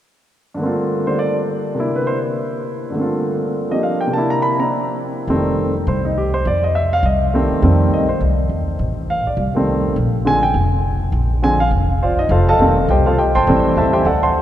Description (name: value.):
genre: jazz.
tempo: 205 BPM.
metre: 4/4.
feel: swing 60% on 8ths.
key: unclear.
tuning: A4 = 441 Hz.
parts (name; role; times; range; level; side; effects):
warm grand piano; melody; 0.5-14.4 s; G2 to C6; -16 LUFS; equal; none.
upright bass; bass; 5.3-14.4 s; E1 to F2; -18 LUFS; equal; none.
room: wet cathedral reverb, RT60 4.6 s.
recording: recorded in a church or concert hall.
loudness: -15 LUFS.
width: side -12 dB against mid.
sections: 0.6-5.3 A section; 5.3-14.4 B section.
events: none.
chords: 0.6 Gm11; 1.8 C9; 2.9 Gm11; 4.1 C9; 5.3 F9; 10.0 Bb7; 12.3 F9; 13.5 Am7.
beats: | 0.60 0.89 1.18 1.48 | 1.77 2.06 2.35 2.65 | 2.94 3.23 3.52 3.82 | 4.11 4.40 4.69 4.99 | 5.28 5.57 5.87 6.16 | 6.45 6.74 7.03 7.33 | 7.62 7.91 8.20 8.50 | 8.79 9.08 9.37 9.67 | 9.96 10.25 10.54 10.84 | 11.13 11.42 11.71 12.01 | 12.30 12.59 12.88 13.18 | 13.47 13.76 14.06 14.35.